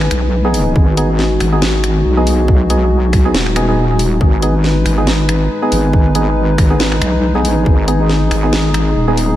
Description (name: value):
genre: deep dubstep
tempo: 139 BPM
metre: 4/4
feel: swing 55% on 16ths, half-time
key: G# minor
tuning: A4 = 442 Hz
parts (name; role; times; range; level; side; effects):
- dark analog pad; sustained chords; 0.0-9.4 s; G#3 to B4; -18 LUFS; left 1 dB; chorus
- wobble bass; bass; 0.0-9.4 s; D#1 to B1; -14 LUFS; equal; chorus
- garage drum kit; drums; 0.0-9.3 s; finger snaps, hi-hat, snare drum; -21 LUFS; equal; none
- percussive organ stab; stabs; 0.4-9.4 s; B3 to G#4; -19 LUFS; right 1 dB; chorus, dub echo
- electronic kick drum; drums; 0.8-7.8 s; none; -12 LUFS; equal; none
room: moderate church reverb, RT60 2.8 s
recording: dreamy mix soaked in reverb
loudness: -11 LUFS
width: side -13 dB against mid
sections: 0.0-9.4 A section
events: none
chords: 0.0 G#m